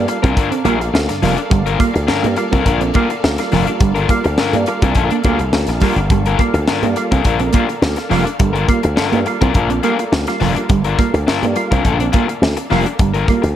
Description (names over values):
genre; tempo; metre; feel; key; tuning
funk; 104 BPM; 4/4; straight; G minor; A4 = 439 Hz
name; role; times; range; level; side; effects
soft string machine; sustained chords; 0.0-13.6 s; A4 to F5; -26 LUFS; equal; ensemble chorus
mellow electric guitar; riff; 0.0-13.4 s; F3 to C4; -20 LUFS; right 8 dB; none
slap bass with an envelope filter; bass; 0.0-13.5 s; F1 to G2; -18 LUFS; equal; none
crunchy overdriven guitar; accompaniment; 0.1-13.5 s; D4 to Bb4; -20 LUFS; left 8 dB; spring reverb
percussive tonewheel organ; stabs; 0.1-13.5 s; G2 to F4; -23 LUFS; right 3 dB; chorus vibrato, slow rotary speaker
crisp fusion drum kit; drums; 0.1-13.6 s; hi-hat, kick drum, snare drum; -18 LUFS; equal; none
room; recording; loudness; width
light reverb, small room ambience; none; -13 LUFS; side -11 dB against mid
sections
0.0-13.6 A section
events
none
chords
0.0 Gm7